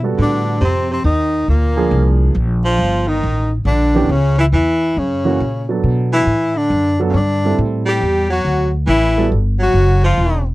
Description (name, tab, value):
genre	jazz, small-group swing and bop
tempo	138 BPM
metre	4/4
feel	swing 67% on 8ths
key	unclear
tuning	A4 = 439 Hz
part	warm upright piano	accompaniment	0.0-9.3 s	E3 to A4	-19 LUFS	right 4 dB	none
part	upright bass	bass	0.0-10.5 s	E1 to B2	-16 LUFS	equal	none
part	breathy tenor saxophone	melody	0.2-10.5 s	Bb3 to G4	-18 LUFS	left 2 dB	none
part	warm baritone saxophone	second line	0.2-10.4 s	Bb2 to G3	-21 LUFS	right 2 dB	none
room	little or no reverb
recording	dry, close 1970s-style studio recording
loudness	-13 LUFS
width	side -18 dB against mid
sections	0.0-10.5 A section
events	none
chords	0.0 Gmaj9; 0.6 Cmadd11; 1.5 Bb7; 2.4 Ebmaj9; 4.1 C#m; 5.0 F#7; 5.8 Bm7; 7.6 Am7; 8.4 D; 9.3 Fsus2